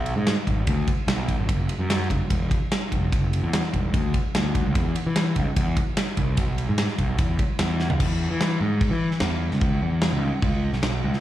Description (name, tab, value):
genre	classic rock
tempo	148 BPM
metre	4/4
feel	straight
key	unclear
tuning	A4 = 440 Hz
part	fuzz picked electric bass	bass	0.0-11.1 s	E1 to E3	-24 LUFS	equal	overdrive
part	big rock drum kit	drums	0.1-11.2 s	crash cymbal, kick drum, ride cymbal, snare drum, toms	-24 LUFS	equal	none
room	little or no reverb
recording	live gig heard through the venue's PA, club reverb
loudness	-21 LUFS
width	side -13 dB against mid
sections	0.0-8.0 A section; 8.0-11.2 B section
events	drum fill 7.8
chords	none